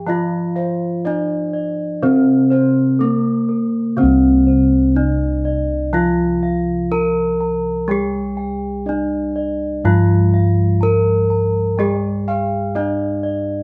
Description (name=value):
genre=Javanese gamelan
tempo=62 BPM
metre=4/4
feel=straight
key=C slendro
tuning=A4 = 444 Hz
part: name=gamelan-type bronze metallophone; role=melody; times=0.0-13.6 s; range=Bb3-45c to Bb4-45c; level=-20 LUFS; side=equal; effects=none
part: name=gamelan-type bronze metallophone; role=accompaniment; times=0.0-13.6 s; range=C3 to G3+25c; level=-26 LUFS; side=equal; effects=none
part: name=gamelan-type bronze metallophone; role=arpeggios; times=0.0-13.6 s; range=Bb4-45c to Bb5-45c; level=-30 LUFS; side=equal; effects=none
part: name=gamelan-type bossed gongs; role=bass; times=0.0-13.6 s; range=C2 to G4+25c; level=-23 LUFS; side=equal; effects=none
part: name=gamelan-type bossed gongs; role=arpeggios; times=0.1-3.6, 11.8-13.3 s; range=Bb4-45c to F5-35c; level=-30 LUFS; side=equal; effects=none
room=light reverb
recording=band playing live in one room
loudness=-17 LUFS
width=mono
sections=0.0-4.0 A section; 4.0-13.6 A section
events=none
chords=none